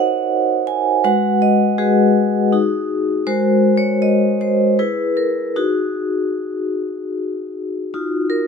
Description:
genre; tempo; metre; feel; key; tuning
classical, contemporary piece for solo vibraphone; 75-82 BPM; 3/4; rubato; Eb minor; A4 = 439 Hz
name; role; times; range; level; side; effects
vibraphone with medium hard mallets; solo; 0.0-8.5 s; Ab3 to Ab5; -15 LUFS; equal; none
room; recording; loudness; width
light reverb; none; -15 LUFS; side -6 dB against mid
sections
0.0-7.9 A section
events
none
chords
0.0 Ebm; 1.0 Abm7; 2.5 Ebmadd11; 3.3 Absus2; 4.8 E; 5.6 Ebmadd11; 7.9 Ebmadd9

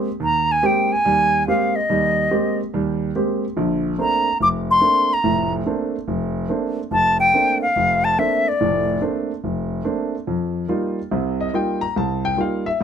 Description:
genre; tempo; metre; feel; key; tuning
jazz; 143 BPM; 4/4; swing 66% on 8ths; unclear; A4 = 440 Hz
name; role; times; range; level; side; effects
warm concert grand piano; accompaniment; 0.0-12.8 s; F1 to Bb5; -21 LUFS; right 1 dB; none
silver concert flute; melody; 0.2-9.0 s; D5 to D6; -17 LUFS; left 1 dB; none
room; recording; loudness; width
light reverb; close, detailed microphones; -17 LUFS; side -8 dB against mid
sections
0.0-10.3 A section; 10.3-12.8 B section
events
none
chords
0.0 Abmaj9; 3.6 Bbmaj9; 10.3 F9sus4

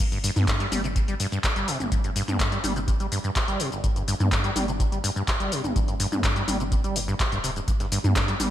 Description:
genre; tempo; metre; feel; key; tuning
acid house; 125 BPM; 4/4; straight; unclear; A4 = 440 Hz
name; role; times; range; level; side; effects
acid bass, saw; riff; 0.0-8.5 s; G1 to G3; -28 LUFS; equal; overdrive, wide subtle chorus, sidechain pumping, digital delay
saturated sub bass; bass; 0.0-8.5 s; D1 to G2; -30 LUFS; equal; sidechain pumping
electro analog drum machine; drums; 0.0-8.5 s; crash cymbal, handclaps, hi-hat, shaker, toms; -27 LUFS; left 1 dB; gated reverb
electronic kick drum; drums; 0.0-8.3 s; none; -26 LUFS; equal; none
breakbeat sampler-style drum kit; drums; 7.7-8.5 s; hi-hat, snare drum; -38 LUFS; right 1 dB; none
room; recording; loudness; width
light reverb, digital ambience; bright 1980s-style digital production; -22 LUFS; side -12 dB against mid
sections
0.0-8.5 A section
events
none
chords
none

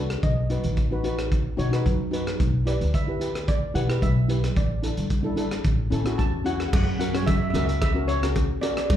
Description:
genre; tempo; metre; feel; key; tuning
calypso; 111 BPM; 4/4; straight; unclear; A4 = 440 Hz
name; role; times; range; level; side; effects
steel pan; melody; 0.0-9.0 s; B4 to A5; -31 LUFS; right 2 dB; plate reverb, slapback echo
steel pan; accompaniment; 0.0-8.9 s; C#4 to C#5; -29 LUFS; left 2 dB; plate reverb, slapback echo
upright bass; bass; 0.0-9.0 s; G1 to B2; -25 LUFS; equal; none
crunchy breakbeat drum kit; drums; 0.1-9.0 s; crash cymbal, hi-hat, kick drum, rim click; -27 LUFS; equal; none
cowbell; percussion; 6.7-9.0 s; none; -35 LUFS; right 4 dB; slapback echo
room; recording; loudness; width
light reverb; live gig heard through the venue's PA, club reverb; -22 LUFS; side -11 dB against mid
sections
0.0-6.7 A section; 6.7-9.0 B section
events
none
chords
0.2 B7; 2.4 Em7/B; 4.6 A7sus4; 5.7 A; 6.7 F#

